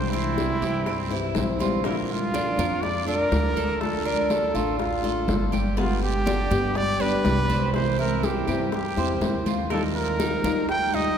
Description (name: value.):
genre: latin, Cuban son and guajira.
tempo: 122 BPM.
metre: 4/4.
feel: straight.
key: unclear.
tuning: A4 = 440 Hz.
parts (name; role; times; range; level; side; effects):
breathy trumpet; melody; 0.0-11.2 s; E4 to G5; -27 LUFS; right 2 dB; none.
nylon-string guitar; accompaniment; 0.0-11.2 s; B2 to G4; -28 LUFS; left 2 dB; none.
Cuban tres; arpeggios; 0.0-11.2 s; Bb3 to C5; -30 LUFS; right 2 dB; none.
upright bass; bass; 0.0-11.1 s; G1 to G2; -29 LUFS; equal; none.
bongos; percussion; 0.1-10.9 s; none; -34 LUFS; left 3 dB; none.
congas; percussion; 0.1-11.2 s; none; -31 LUFS; left 1 dB; none.
guiro; percussion; 0.4-11.2 s; none; -40 LUFS; right 8 dB; none.
room: wet cathedral reverb, RT60 4.7 s.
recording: recorded in a church or concert hall.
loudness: -22 LUFS.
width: side -8 dB against mid.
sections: 0.0-1.8 A section; 1.8-11.2 B section.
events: none.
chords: 0.0 C; 1.8 Bb; 3.8 Dm; 5.8 G; 7.7 C7; 9.7 Ebadd9.